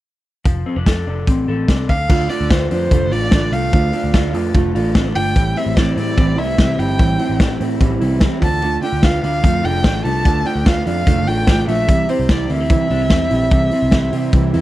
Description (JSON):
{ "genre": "jangly indie pop", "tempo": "147 BPM", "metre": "4/4", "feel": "straight", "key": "D minor", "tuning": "A4 = 439 Hz", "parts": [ { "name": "electric guitar through a small old amp", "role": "arpeggios", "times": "0.5-14.6 s", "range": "A2 to A4", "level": "-23 LUFS", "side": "left 4 dB", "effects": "spring reverb" }, { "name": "vintage muted picked electric bass", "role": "bass", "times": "0.5-14.6 s", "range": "F1 to C3", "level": "-21 LUFS", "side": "equal", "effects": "none" }, { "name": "raw garage drum kit", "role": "drums", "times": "0.5-14.6 s", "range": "crash cymbal, hi-hat, kick drum, snare drum", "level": "-15 LUFS", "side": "equal", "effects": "none" }, { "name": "warm violin", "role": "melody", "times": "1.9-14.6 s", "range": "C5 to A5", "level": "-22 LUFS", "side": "equal", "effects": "slapback echo" }, { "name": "fingerpicked plugged-in steel-string acoustic guitar", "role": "accompaniment", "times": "2.1-14.6 s", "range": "A2 to F4", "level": "-21 LUFS", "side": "right 6 dB", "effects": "none" } ], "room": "little or no reverb", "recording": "dry, close 1970s-style studio recording", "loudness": "-14 LUFS", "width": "side -15 dB against mid", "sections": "0.5-2.1 A section; 2.1-14.6 B section", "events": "none", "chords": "0.5 F6; 1.9 Dm; 5.4 Am7; 8.4 Dm; 11.9 C" }